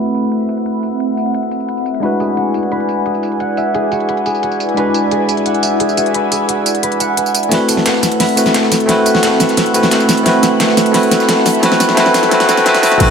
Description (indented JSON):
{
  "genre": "liquid drum and bass",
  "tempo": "175 BPM",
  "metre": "4/4",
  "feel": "straight",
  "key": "A dorian",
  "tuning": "A4 = 439 Hz",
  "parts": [
    { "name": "barky tine electric piano", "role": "accompaniment", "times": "0.0-13.1 s", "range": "G#3 to B4", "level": "-15 LUFS", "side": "equal", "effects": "ping-pong delay" },
    { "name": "airy breathy pad", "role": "sustained chords", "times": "0.0-13.1 s", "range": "A3 to B5", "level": "-18 LUFS", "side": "equal", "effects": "chorus, phaser, sidechain pumping" },
    { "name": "pop drum kit", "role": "drums", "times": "0.1-13.1 s", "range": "crash cymbal, hi-hat, snare drum, tambourine", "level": "-17 LUFS", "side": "equal", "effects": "low-pass filter on hats, low-pass filter on perc, low-pass filter on snare, low-pass filter on cymbals" },
    { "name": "concert harp", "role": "arpeggios", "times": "2.0-13.1 s", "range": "F#4 to F#5", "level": "-20 LUFS", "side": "right 1 dB", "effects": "low-pass filter, ping-pong delay" },
    { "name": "breakbeat sampler-style drum kit", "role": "drums", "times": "7.5-13.1 s", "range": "hi-hat, ride cymbal, snare drum", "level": "-20 LUFS", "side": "equal", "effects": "overdrive, high-pass filter on snare, high-pass filter on cymbals, high-pass filter on hats, high-pass filter on room" },
    { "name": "warm sub bass", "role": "bass", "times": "13.0-13.1 s", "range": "A1", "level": "-22 LUFS", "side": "equal", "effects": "none" },
    { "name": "electronic kick drum", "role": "drums", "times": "13.0-13.1 s", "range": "none", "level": "-12 LUFS", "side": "equal", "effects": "none" },
    { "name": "impact", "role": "sound effects", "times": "13.0-13.1 s", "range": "none", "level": "-17 LUFS", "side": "left 1 dB", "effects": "none" }
  ],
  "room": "moderate lush hall reverb, RT60 2.4 s",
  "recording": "high-pass filter, low-pass filter",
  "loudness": "-11 LUFS",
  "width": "side -6 dB against mid",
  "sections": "0.0-7.5 A section; 7.5-13.0 B section",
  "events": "filter sweep on drum 0.0-7.5; filter sweep on analog synth pad 0.0-7.5; filter sweep 0.0-7.5; build-up 7.5-13.0; drum fill 7.5-13.0",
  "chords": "0.0 Am69; 2.0 E9; 7.5 Am69"
}